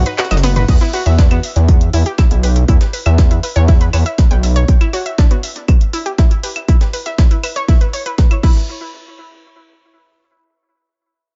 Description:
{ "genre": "melodic techno", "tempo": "120 BPM", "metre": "4/4", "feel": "straight", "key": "E dorian", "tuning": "A4 = 440 Hz", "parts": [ { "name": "gritty driven synth bass", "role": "bass", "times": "0.0-4.6 s", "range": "F#1 to E2", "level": "-15 LUFS", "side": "equal", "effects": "sidechain pumping" }, { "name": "analog pluck", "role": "arpeggios", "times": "0.1-8.9 s", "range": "B3 to D#6", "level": "-25 LUFS", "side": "equal", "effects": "chorus, sidechain pumping, tape echo" }, { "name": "punchy analog drum machine", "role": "drums", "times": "0.1-8.5 s", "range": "claves, crash cymbal, handclaps, hi-hat, ride cymbal, toms", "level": "-27 LUFS", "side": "equal", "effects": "none" }, { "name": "breakbeat sampler-style drum kit", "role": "drums", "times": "0.2-8.3 s", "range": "hi-hat, snare drum, tambourine", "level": "-33 LUFS", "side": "equal", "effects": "high-pass filter on snare, high-pass filter on perc, high-pass filter on hats, tape echo" }, { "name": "electronic kick drum", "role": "drums", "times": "0.7-8.5 s", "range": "none", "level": "-13 LUFS", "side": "equal", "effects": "none" } ], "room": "digital ambience", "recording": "echo-heavy mix, nothing above 7.6 kHz", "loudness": "-13 LUFS", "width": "mono", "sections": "0.7-8.7 A section; 8.7-11.4 B section", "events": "break 0.0-0.7", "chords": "0.0 B; 0.7 E5; 8.4 N.C.", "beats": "0.18 | 0.68 1.18 1.68 2.18 | 2.68 3.18 3.68 4.18 | 4.68 5.18 5.68 6.18 | 6.68 7.18 7.68 8.18 | 8.68" }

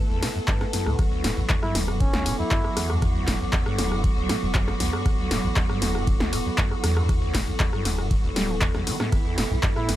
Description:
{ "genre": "acid house", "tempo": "118 BPM", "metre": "4/4", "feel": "straight", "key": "unclear", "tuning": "A4 = 440 Hz", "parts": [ { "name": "clear chamber string section", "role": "sustained chords", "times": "0.0-10.0 s", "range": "E3 to A4", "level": "-33 LUFS", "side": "right 1 dB", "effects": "sidechain pumping" }, { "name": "warm sub bass", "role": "bass", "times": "0.0-10.0 s", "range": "D1 to E2", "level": "-29 LUFS", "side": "equal", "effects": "sidechain pumping" }, { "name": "warbly tape-like pad", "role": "texture", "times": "0.0-10.0 s", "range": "B3 to D6", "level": "-31 LUFS", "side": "right 1 dB", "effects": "chorus, built-in reverb, sidechain pumping" }, { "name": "acid bass, saw", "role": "riff", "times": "0.1-10.0 s", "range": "E1 to G3", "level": "-29 LUFS", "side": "equal", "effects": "overdrive, wide subtle chorus, cassette tape, sidechain pumping" }, { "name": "punchy analog drum machine", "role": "drums", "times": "0.2-10.0 s", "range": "handclaps, hi-hat, ride cymbal, rim click, snare drum", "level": "-28 LUFS", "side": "equal", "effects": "overdrive" }, { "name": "electronic kick drum", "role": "drums", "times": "0.5-9.7 s", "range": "none", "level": "-25 LUFS", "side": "equal", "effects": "none" }, { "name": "trumpet with bucket mute", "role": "melody", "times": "1.6-2.9, 9.8-9.9 s", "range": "C#4 to E4", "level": "-31 LUFS", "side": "equal", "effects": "digital delay" } ], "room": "light reverb", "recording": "none", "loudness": "-21 LUFS", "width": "side -14 dB against mid", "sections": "0.0-10.0 A section", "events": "none", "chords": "0.0 F#m7; 1.0 Em7; 9.1 F#m7", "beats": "0.48 | 0.99 1.50 2.00 2.51 | 3.02 3.53 4.04 4.55 | 5.06 5.56 6.07 6.58 | 7.09 7.60 8.11 8.62 | 9.12 9.63" }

